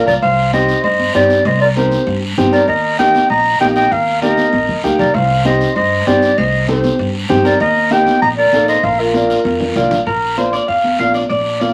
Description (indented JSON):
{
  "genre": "latin, cumbia",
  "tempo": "195 BPM",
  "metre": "4/4",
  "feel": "straight",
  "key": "unclear",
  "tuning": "A4 = 436 Hz",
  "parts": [
    { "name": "breathy clarinet", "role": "melody", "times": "0.0-9.9 s", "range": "Bb4 to Bb5", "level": "-16 LUFS", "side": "equal", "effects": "none" },
    { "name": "clear upright piano", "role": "accompaniment", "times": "0.0-11.7 s", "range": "Bb3 to Bb4", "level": "-19 LUFS", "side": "equal", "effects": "none" },
    { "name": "upright bass", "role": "bass", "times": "0.0-11.7 s", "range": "Bb1 to G2", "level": "-23 LUFS", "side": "equal", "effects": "none" },
    { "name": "electric guitar at the edge of break-up", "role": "second line", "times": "0.1-11.7 s", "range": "F4 to F5", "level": "-23 LUFS", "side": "equal", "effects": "none" },
    { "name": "congas", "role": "percussion", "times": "0.1-11.7 s", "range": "none", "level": "-25 LUFS", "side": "equal", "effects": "none" },
    { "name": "guiro", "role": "percussion", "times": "0.1-11.7 s", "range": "none", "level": "-30 LUFS", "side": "equal", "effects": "none" }
  ],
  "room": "wet studio reverb, RT60 0.5 s",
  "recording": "vinyl crackle",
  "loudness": "-14 LUFS",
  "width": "mono",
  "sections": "0.2-10.1 A section; 10.1-11.7 B section",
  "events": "drum fill 0.0, 4.4-5.1, 9.5-10.1; clean electric guitar solo 10.1-11.7",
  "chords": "0.2 Cm; 2.7 Eb; 5.1 Cm; 7.6 Eb; 8.8 Bb"
}